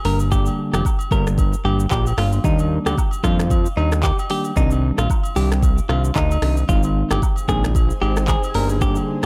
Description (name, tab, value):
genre	afrobeats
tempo	113 BPM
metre	4/4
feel	swing 58% on 16ths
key	unclear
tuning	A4 = 437 Hz
part	bell-like tine electric piano	accompaniment	0.0-9.3 s	D3 to Eb4	-28 LUFS	equal	plate reverb
part	afro-pop drum kit	drums	0.0-9.3 s	finger snaps, handclaps, hi-hat, kick drum, rim click, shaker	-23 LUFS	equal	none
part	direct-recorded clean electric guitar	melody	0.1-8.9 s	Eb4 to Bb4	-28 LUFS	equal	spring reverb, tape echo, plate reverb
part	fat analog bass	bass	0.1-9.3 s	F1 to F2	-22 LUFS	equal	none
part	agogo bells and woodblock	percussion	0.2-9.3 s	none	-35 LUFS	equal	none
part	granular cloud pad	sustained chords	7.4-9.3 s	D4 to Ab5	-34 LUFS	equal	built-in reverb, sidechain pumping, plate reverb
room	little or no reverb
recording	none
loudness	-19 LUFS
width	mono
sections	0.0-9.3 A section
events	none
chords	0.1 Gm; 2.4 Ebmaj7; 4.6 Cmadd9; 6.7 Ab; 8.5 Gm